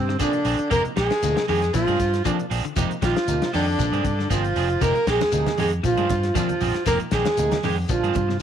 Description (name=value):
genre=afrobeat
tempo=117 BPM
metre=4/4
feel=swing 54% on 16ths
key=F dorian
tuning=A4 = 440 Hz
part: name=trombone with bucket mute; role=melody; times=0.0-8.4 s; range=C4 to Bb4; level=-24 LUFS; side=right 1 dB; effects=none
part: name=clear trumpet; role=second line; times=0.0-8.4 s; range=C4 to Bb4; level=-32 LUFS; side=right 12 dB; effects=none
part: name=warm baritone saxophone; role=second line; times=0.0-8.4 s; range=C3 to Bb3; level=-31 LUFS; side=left 11 dB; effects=none
part: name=clean electric guitar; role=arpeggios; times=0.0-8.4 s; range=C3 to Ab3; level=-31 LUFS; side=left 10 dB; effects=slapback echo
part: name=fingered electric bass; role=bass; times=0.0-8.4 s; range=F1 to G2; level=-26 LUFS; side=equal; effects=none
part: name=warm soul drum kit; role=drums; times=0.1-8.4 s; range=hi-hat, kick drum, snare drum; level=-29 LUFS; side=left 3 dB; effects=none
part: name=barky tine electric piano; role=accompaniment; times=0.2-8.4 s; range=C3 to Eb4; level=-34 LUFS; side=right 11 dB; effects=ensemble chorus
part: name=electric guitar at the edge of break-up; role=stabs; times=0.2-8.2 s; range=F3 to Ab4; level=-30 LUFS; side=right 12 dB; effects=none
part: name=shekere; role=percussion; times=0.2-8.4 s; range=none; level=-33 LUFS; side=left 6 dB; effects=none
part: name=congas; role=percussion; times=4.8-8.3 s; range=none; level=-31 LUFS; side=right 6 dB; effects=none
room=light reverb, small room ambience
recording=1960s-style stereo with parts hard left and right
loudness=-19 LUFS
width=side -9 dB against mid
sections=0.0-8.4 A section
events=none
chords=0.0 Bb9; 0.7 Fm9; 1.7 Bb9; 2.8 Fm9; 3.8 Bb9; 4.8 Fm9; 5.8 Bb9; 6.9 Fm9; 7.9 Bb9